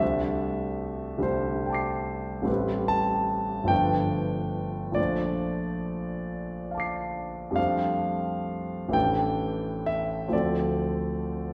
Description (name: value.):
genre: classical, impressionist solo piano.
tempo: 43-50 BPM (dotted quarters).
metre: 6/8.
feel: rubato.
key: unclear.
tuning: A4 = 440 Hz.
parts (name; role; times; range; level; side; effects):
warm concert grand piano; solo; 0.0-11.5 s; G1 to C7; -28 LUFS; equal; none.
room: wet scoring stage reverb, RT60 1.6 s.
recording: recorded in a church or concert hall.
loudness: -28 LUFS.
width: mono.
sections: 0.0-11.5 A section.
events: none.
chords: 0.0 C69; 2.5 Am9; 3.7 G9; 5.0 Bbmaj9; 7.6 F69; 8.9 A7sus4; 10.3 Dm7.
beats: | 0.01 1.25 | 2.48 3.70 | 4.97 6.28 | 7.57 8.94 | 10.32.